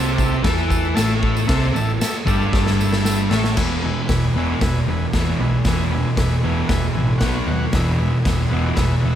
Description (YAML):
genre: garage rock duo or trio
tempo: 115 BPM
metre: 4/4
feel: straight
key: unclear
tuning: A4 = 440 Hz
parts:
  - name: overdriven combo organ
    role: sustained chords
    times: 0.0-9.2 s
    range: F#4 to A5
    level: -29 LUFS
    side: left 2 dB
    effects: none
  - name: thick fuzz guitar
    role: riff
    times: 0.0-9.2 s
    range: E2 to E4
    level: -20 LUFS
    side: right 1 dB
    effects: distortion
  - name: hollow-body short-scale picked electric bass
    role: bass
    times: 0.0-9.2 s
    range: E1 to E2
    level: -24 LUFS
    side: equal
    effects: tube saturation
  - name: raw garage drum kit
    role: drums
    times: 0.2-8.9 s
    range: crash cymbal, hi-hat, kick drum, snare drum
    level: -22 LUFS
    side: equal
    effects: none
  - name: tambourine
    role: percussion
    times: 0.2-3.4 s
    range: none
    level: -35 LUFS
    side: right 8 dB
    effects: none
room: light reverb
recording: none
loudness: -17 LUFS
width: side -10 dB against mid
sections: 0.0-3.6 A section; 3.6-9.2 B section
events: drum fill 2.5-3.6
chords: 0.0 A5; 3.6 E; 7.2 B5; 7.7 E